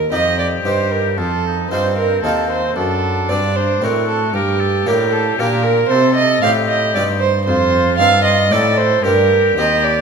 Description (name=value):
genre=classical, baroque-style sonata movement with continuo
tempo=114 BPM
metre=3/4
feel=straight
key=unclear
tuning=A4 = 440 Hz
part: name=warm violin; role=second line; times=0.0-10.0 s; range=G4 to F5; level=-16 LUFS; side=right 5 dB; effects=none
part: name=harpsichord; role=accompaniment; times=0.0-10.0 s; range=Eb2 to A4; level=-22 LUFS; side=left 3 dB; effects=none
part: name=warm cello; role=bass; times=0.0-10.0 s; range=Eb2 to C3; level=-20 LUFS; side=equal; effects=none
part: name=bright oboe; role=melody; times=0.1-10.0 s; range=C4 to Bb4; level=-22 LUFS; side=left 8 dB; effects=none
room=wet recital hall reverb, RT60 1.4 s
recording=none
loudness=-13 LUFS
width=side -6 dB against mid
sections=0.0-10.0 A section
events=none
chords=0.0 Eb; 1.2 F7; 2.8 D7/F#; 4.3 Gm; 5.9 Cm; 7.5 F7; 9.0 Gm